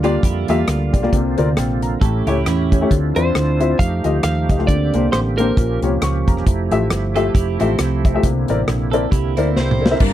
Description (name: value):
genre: uptempo gospel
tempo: 135 BPM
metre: 4/4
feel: swing 57% on 8ths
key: F major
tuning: A4 = 439 Hz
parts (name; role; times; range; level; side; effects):
- twelve-string electric guitar; second line; 0.0-2.9, 7.2-10.0 s; C4 to A4; -27 LUFS; right 12 dB; none
- warm baby grand piano; accompaniment; 0.0-10.1 s; G2 to Db6; -20 LUFS; left 4 dB; none
- bright tonewheel organ; sustained chords; 0.0-10.1 s; D3 to A5; -24 LUFS; right 5 dB; slow rotary speaker, chorus vibrato
- hollow-body short-scale fingered electric bass; bass; 0.0-10.1 s; E1 to F2; -20 LUFS; equal; none
- modern studio drum kit; drums; 0.0-10.1 s; crash cymbal, hi-hat, kick drum, rim click, snare drum, toms; -18 LUFS; equal; none
- clean electric guitar; melody; 3.2-5.8 s; Bb4 to F5; -23 LUFS; right 2 dB; none
- mellow horn section; melody; 9.6-10.1 s; Bb3 to C5; -22 LUFS; right 1 dB; none
room: small room ambience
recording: dry, close 1970s-style studio recording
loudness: -15 LUFS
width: side -12 dB against mid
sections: 0.0-10.0 A section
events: drum fill 9.6-10.0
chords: 0.0 Gm7; 1.1 C9sus4; 2.0 A7; 2.9 Dm9; 3.8 F9; 4.7 Bb69; 5.6 Bbm6; 6.5 Fmaj9; 8.2 C9